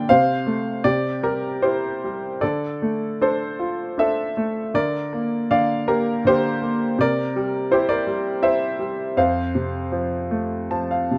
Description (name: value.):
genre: classical, lyrical solo piano.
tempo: 75-83 BPM.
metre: 3/4.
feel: rubato.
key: F major.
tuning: A4 = 441 Hz.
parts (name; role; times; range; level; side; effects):
clear concert grand piano; solo; 0.0-11.2 s; F2 to A5; -22 LUFS; equal; none.
room: light reverb.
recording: none.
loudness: -22 LUFS.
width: mono.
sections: 0.0-11.2 A section.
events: grand piano fill 10.3-11.2.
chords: 0.1 F/C; 0.8 C; 2.4 Dmadd9; 4.7 Gm/D; 7.0 C7; 9.2 F.